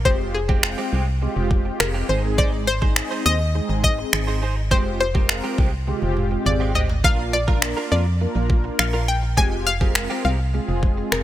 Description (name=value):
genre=dance-pop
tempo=103 BPM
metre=4/4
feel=straight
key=F dorian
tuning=A4 = 441 Hz
part: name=direct-recorded clean electric guitar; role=riff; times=0.0-11.2 s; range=Ab3 to C5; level=-32 LUFS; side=right 6 dB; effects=ensemble chorus
part: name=organ-like FM bass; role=bass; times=0.0-11.2 s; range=F1 to F2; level=-23 LUFS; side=equal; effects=sidechain pumping
part: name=analog pluck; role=melody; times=0.1-11.2 s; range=Ab4 to Ab5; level=-24 LUFS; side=left 2 dB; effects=chorus
part: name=mellow synth brass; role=accompaniment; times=0.1-11.2 s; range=Ab3 to G5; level=-27 LUFS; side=equal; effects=chorus, sidechain pumping
part: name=smooth R&B drum kit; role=drums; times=0.1-11.2 s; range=finger snaps, kick drum, toms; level=-21 LUFS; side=equal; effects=none
room=digital ambience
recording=none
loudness=-18 LUFS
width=side -13 dB against mid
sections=0.0-11.2 A section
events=drum fill 5.9-7.0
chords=0.1 Fmadd9; 2.1 Ab; 4.7 Fmadd9; 7.0 Bb; 9.4 Fmadd9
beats=| 0.05 0.63 1.22 1.80 | 2.38 2.96 3.55 4.13 | 4.71 5.29 5.88 6.46 | 7.04 7.62 8.21 8.79 | 9.37 9.96 10.54 11.12